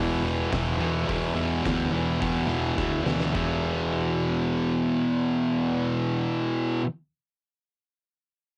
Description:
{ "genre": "garage rock duo or trio", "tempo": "106 BPM", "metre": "4/4", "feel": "straight", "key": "unclear", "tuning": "A4 = 441 Hz", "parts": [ { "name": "fuzz guitar", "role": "riff", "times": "0.0-6.9 s", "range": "E2 to E3", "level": "-27 LUFS", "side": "equal", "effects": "distortion" }, { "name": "hollow-body short-scale picked electric bass", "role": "bass", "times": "0.0-6.7 s", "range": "E1 to E2", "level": "-36 LUFS", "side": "equal", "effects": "tube saturation" }, { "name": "oversized low-tuned drum kit", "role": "drums", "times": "0.5-3.5 s", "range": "hi-hat, kick drum, snare drum, splash cymbal", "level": "-36 LUFS", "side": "equal", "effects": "cassette tape" } ], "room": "light reverb", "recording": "home recording on cassette", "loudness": "-26 LUFS", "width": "mono", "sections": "0.0-3.4 A section; 3.4-5.6 B section", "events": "drum fill 2.8-3.4", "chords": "0.0 E5" }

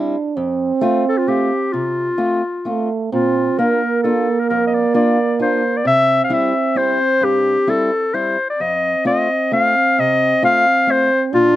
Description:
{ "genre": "alpine folk, alpine dance band", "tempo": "132 BPM", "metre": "3/4", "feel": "swing 54% on 8ths, rubato", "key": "F major, Bb major from 3.1 s", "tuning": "A4 = 444 Hz", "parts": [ { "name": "warm euphonium", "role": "second line", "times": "0.0-11.6 s", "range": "A3 to D4", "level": "-19 LUFS", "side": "right 5 dB", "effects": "none" }, { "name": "fingerpicked steel-string acoustic guitar", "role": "accompaniment", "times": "0.0-11.6 s", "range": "F2 to F4", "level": "-22 LUFS", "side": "left 2 dB", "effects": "slapback echo" }, { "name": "warm clarinet", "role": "melody", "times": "1.1-11.6 s", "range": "F4 to F5", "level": "-16 LUFS", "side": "left 2 dB", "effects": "slapback echo" } ], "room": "light reverb", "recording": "recorded outdoors, with no room sound", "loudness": "-14 LUFS", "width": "side -14 dB against mid", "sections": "0.0-3.1 A section; 3.1-11.6 B section", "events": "none", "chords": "0.4 F; 3.1 Bb; 5.8 C; 8.6 F7" }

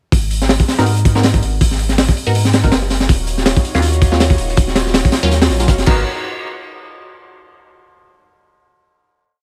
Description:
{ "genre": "drum and bass, jungle", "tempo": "162 BPM", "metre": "4/4", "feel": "swing 55% on 16ths", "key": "G# dorian", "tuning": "A4 = 440 Hz", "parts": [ { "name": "saturated sub bass", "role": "bass", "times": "0.1-6.0 s", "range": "D#1 to G#2", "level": "-19 LUFS", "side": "equal", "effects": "tube saturation" }, { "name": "crunchy breakbeat drum kit", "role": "drums", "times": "0.1-6.0 s", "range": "crash cymbal, hi-hat, kick drum, snare drum", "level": "-17 LUFS", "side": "equal", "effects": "none" }, { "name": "filtered dub chord stab", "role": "stabs", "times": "0.8-6.0 s", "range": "F#3 to A#4", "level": "-24 LUFS", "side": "equal", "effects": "phaser, cassette tape, dub echo" }, { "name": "airy breathy pad", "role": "sustained chords", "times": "3.1-6.0 s", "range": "D#4 to F#5", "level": "-27 LUFS", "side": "equal", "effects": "chorus" }, { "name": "vintage drum kit", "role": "drums", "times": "3.1-5.8 s", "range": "hi-hat, snare drum", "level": "-30 LUFS", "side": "equal", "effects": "none" } ], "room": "little or no reverb", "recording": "none", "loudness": "-14 LUFS", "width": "mono", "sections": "0.1-6.1 drop; 6.1-7.5 final hit", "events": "drop 0.1-6.1", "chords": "0.1 G#7(no3); 3.1 D#m9; 5.9 G#m9; 6.1 N.C." }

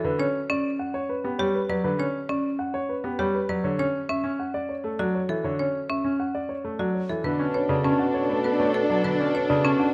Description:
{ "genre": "classical, minimalist pattern music", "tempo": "100 BPM", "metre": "3/4", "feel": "straight", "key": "D major", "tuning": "A4 = 439 Hz", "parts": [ { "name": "warm grand piano", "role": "melody", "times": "0.0-9.9 s", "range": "G4 to A5", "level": "-33 LUFS", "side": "equal", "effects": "none" }, { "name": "clear concert grand piano", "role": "accompaniment", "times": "0.0-9.8 s", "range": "C#3 to C#4", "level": "-30 LUFS", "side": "equal", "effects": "none" }, { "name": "marimba with hard mallets", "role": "arpeggios", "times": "0.0-9.8 s", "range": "C#4 to C#5", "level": "-31 LUFS", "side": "equal", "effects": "none" }, { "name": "bright alto flute", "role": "second line", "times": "7.2-9.9 s", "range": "D4", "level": "-29 LUFS", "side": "equal", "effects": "none" }, { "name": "rich symphonic string section", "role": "sustained chords", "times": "7.2-9.9 s", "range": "D4 to A4", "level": "-34 LUFS", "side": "equal", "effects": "none" }, { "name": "dark bassoon", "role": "bass", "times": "7.2-9.9 s", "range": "B2", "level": "-30 LUFS", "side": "equal", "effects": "none" } ], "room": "light reverb", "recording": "close, detailed microphones", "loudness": "-26 LUFS", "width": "mono", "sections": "0.0-7.2 A section; 7.2-9.9 B section", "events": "none", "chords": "0.0 G; 3.6 Dmaj7; 7.2 Bm7" }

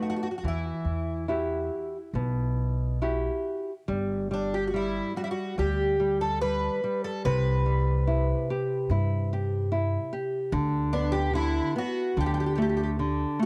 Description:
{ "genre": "fado-style ballad", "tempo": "72 BPM", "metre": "4/4", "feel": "rubato", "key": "E harmonic minor, G major from 3.9 s", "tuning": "A4 = 440 Hz", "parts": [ { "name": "fingerpicked twelve-string acoustic guitar", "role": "melody", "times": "0.0-13.5 s", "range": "D4 to B4", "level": "-32 LUFS", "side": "equal", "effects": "cassette tape" }, { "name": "nylon-string guitar", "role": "accompaniment", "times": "0.0-13.5 s", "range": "B2 to G4", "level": "-31 LUFS", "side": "equal", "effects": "cassette tape" }, { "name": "upright bass", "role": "bass", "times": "0.4-13.2 s", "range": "G1 to G2", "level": "-32 LUFS", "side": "equal", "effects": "none" } ], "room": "light reverb", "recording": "home recording on cassette", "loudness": "-28 LUFS", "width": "mono", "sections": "0.0-3.9 A section; 3.9-13.5 B section", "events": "none", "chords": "0.4 Emadd9; 3.9 G5; 7.2 Cmaj7; 10.5 D69; 12.2 D5" }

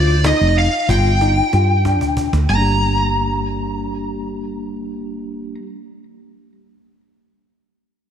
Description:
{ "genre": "progressive instrumental, band music in an uneven meter", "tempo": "187 BPM (eighths)", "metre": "5/8", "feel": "straight", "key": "G minor", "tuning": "A4 = 437 Hz", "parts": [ { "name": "lead guitar through a small cranked amp", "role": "melody", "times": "0.0-5.5 s", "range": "D5 to Bb5", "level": "-19 LUFS", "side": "equal", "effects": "overdrive, ping-pong delay" }, { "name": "tine electric piano", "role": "arpeggios", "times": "0.0-5.7 s", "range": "G3 to G4", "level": "-23 LUFS", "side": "left 2 dB", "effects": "medium stereo tremolo, slapback echo" }, { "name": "woody fretless electric bass", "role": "bass", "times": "0.0-5.5 s", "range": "F1 to G2", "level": "-17 LUFS", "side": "equal", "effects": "none" }, { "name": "cajon", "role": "drums", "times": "0.2-2.6 s", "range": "none", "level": "-26 LUFS", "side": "equal", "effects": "none" } ], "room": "moderate lush hall reverb, RT60 2.5 s", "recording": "big arena sound", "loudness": "-15 LUFS", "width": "side -8 dB against mid", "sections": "0.0-2.5 A section; 2.5-5.7 B section", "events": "drum fill 1.2-2.5", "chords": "0.0 Cmadd11 (rootless); 0.9 G5; 2.5 Gm" }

